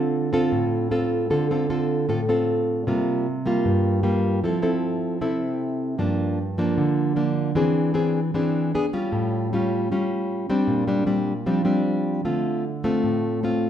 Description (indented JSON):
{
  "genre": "bossa nova",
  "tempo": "154 BPM",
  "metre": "4/4",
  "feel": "straight",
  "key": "D minor",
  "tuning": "A4 = 440 Hz",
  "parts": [
    { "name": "nylon-string guitar", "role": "solo", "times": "0.0-13.7 s", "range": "G2 to A4", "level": "-21 LUFS", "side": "equal", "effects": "none" }
  ],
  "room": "wet large studio reverb, RT60 1.3 s",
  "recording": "band playing live in one room",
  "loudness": "-21 LUFS",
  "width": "side -10 dB against mid",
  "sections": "0.0-1.3 A section; 1.3-13.7 B section",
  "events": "none",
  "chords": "0.0 Dm7; 2.9 C7sus4; 4.4 Fmaj7; 6.0 Gm7; 7.6 Eaug7; 8.7 G7#11; 9.1 A7b13; 10.7 Bb69; 12.2 Dm7",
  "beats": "0.13 0.52 0.91 | 1.30 1.69 2.08 2.47 | 2.86 3.25 3.65 4.04 | 4.43 4.82 5.21 5.60 | 5.99 6.38 6.77 7.17 | 7.56 7.95 8.34 8.73 | 9.12 9.51 9.90 10.29 | 10.68 11.07 11.47 11.86 | 12.25 12.64 13.03 13.42"
}